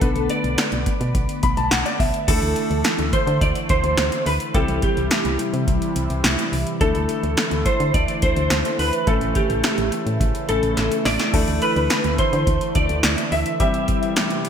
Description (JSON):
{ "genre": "synth-pop", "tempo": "106 BPM", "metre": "4/4", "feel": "straight", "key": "unclear", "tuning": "A4 = 441 Hz", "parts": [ { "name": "clean electric guitar", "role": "melody", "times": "0.0-14.1 s", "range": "G4 to E5", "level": "-24 LUFS", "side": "right 1 dB", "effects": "ensemble chorus, shimmer reverb, ping-pong delay" }, { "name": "warm concert grand piano", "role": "accompaniment", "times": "0.0-14.5 s", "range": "G3 to B5", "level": "-27 LUFS", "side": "left 2 dB", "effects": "shimmer reverb" }, { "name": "sweeping resonant pad", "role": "sustained chords", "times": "0.0-14.5 s", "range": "C3 to F#5", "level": "-27 LUFS", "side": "right 1 dB", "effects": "chorus, shimmer reverb" }, { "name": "solid FM bass", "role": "bass", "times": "0.0-13.4 s", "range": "A1 to D3", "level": "-24 LUFS", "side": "equal", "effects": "none" }, { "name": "electro analog drum machine", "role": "drums", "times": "0.0-14.5 s", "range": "crash cymbal, hi-hat, kick drum, snare drum", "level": "-22 LUFS", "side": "equal", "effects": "gated reverb" } ], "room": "moderate lush hall reverb, RT60 1.6 s, digital ambience", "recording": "bright 1980s-style digital production", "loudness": "-18 LUFS", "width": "side -8 dB against mid", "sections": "0.0-2.3 A section; 2.3-14.5 B section", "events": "grand piano fill 1.1-2.3; drum fill 10.8-11.3", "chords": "0.0 Bm7; 2.3 Dsus2; 4.5 C; 6.8 Dsus2; 9.1 A; 11.3 Dsus2; 13.6 C" }